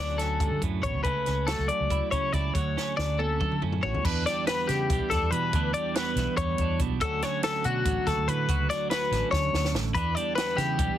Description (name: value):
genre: math rock and midwest emo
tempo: 283 BPM (eighths)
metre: 7/8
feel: straight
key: unclear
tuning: A4 = 440 Hz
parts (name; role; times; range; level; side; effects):
- twelve-string electric guitar; accompaniment; 0.0-11.0 s; D2 to A4; -32 LUFS; right 10 dB; none
- twelve-string electric guitar; arpeggios; 0.0-11.0 s; F#4 to D5; -28 LUFS; left 4 dB; none
- fretless electric bass; bass; 0.0-10.9 s; A1 to E3; -30 LUFS; equal; none
- compact cocktail drum kit; drums; 0.2-10.9 s; crash cymbal, hi-hat, kick drum, snare drum, toms; -31 LUFS; equal; none
room: light reverb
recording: heavily compressed radio sound, multiband compression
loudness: -24 LUFS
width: side -11 dB against mid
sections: 0.0-4.0 A section; 4.0-11.0 B section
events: drum fill 2.8-4.0, 9.3-10.0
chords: 0.0 Dmaj7; 1.0 F#m7/C#; 2.5 Dmaj7; 4.0 Em7; 7.0 Dmaj7; 10.0 Em7